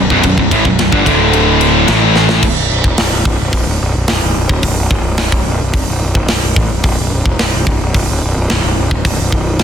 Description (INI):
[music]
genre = heavy metal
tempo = 109 BPM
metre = 4/4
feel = straight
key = B phrygian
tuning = A4 = 440 Hz
[part]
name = heavy high-gain guitar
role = riff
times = 0.0-2.4 s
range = B1 to A3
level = -13 LUFS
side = right 14 dB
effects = distortion
[part]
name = high-gain distorted guitar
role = riff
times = 0.0-2.4 s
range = B1 to A3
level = -13 LUFS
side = left 14 dB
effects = distortion
[part]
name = fuzz picked electric bass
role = bass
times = 0.0-9.6 s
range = B0 to A1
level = -15 LUFS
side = equal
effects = overdrive
[part]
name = tight metal drum kit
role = drums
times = 0.1-9.6 s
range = crash cymbal, hi-hat, kick drum, ride cymbal, snare drum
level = -14 LUFS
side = equal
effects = soft clipping on kick
[sound]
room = little or no reverb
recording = dense, heavily limited modern master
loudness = -10 LUFS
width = side -8 dB against mid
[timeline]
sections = 0.0-2.4 A section; 2.4-9.6 B section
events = drum fill 2.2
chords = 0.0 Bm; 1.1 D5; 1.9 A5; 2.4 N.C.